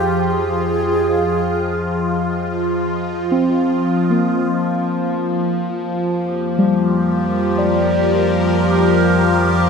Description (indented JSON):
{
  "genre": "ambient",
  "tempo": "free time",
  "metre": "none",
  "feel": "none",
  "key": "F dorian",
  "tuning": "A4 = 440 Hz",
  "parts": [
    { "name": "alto flute", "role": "melody", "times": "0.0-2.4 s", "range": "G4 to Ab4", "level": "-23 LUFS", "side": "right 2 dB", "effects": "ping-pong delay" },
    { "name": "evolving wavetable pad", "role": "sustained chords", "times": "0.0-9.7 s", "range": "F3 to Eb5", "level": "-18 LUFS", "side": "equal", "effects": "phaser, built-in reverb" },
    { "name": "muted felt-like synth keys", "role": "arpeggios", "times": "0.0-9.7 s", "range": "G3 to G5", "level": "-20 LUFS", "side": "equal", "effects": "chorus, ping-pong delay" },
    { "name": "deep rumbling drone", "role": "bass", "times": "0.0-9.7 s", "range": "F2", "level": "-28 LUFS", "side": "equal", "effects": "built-in reverb" },
    { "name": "pedal harmonium", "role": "drone", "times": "4.5-9.7 s", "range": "F3", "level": "-25 LUFS", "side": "left 4 dB", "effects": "none" }
  ],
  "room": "wet cathedral reverb, RT60 5.5 s",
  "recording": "in a vast, echoing space",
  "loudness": "-15 LUFS",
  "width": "side -5 dB against mid",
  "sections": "0.0-9.7 A section",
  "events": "none",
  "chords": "0.0 Fm7; 4.5 Gm/F"
}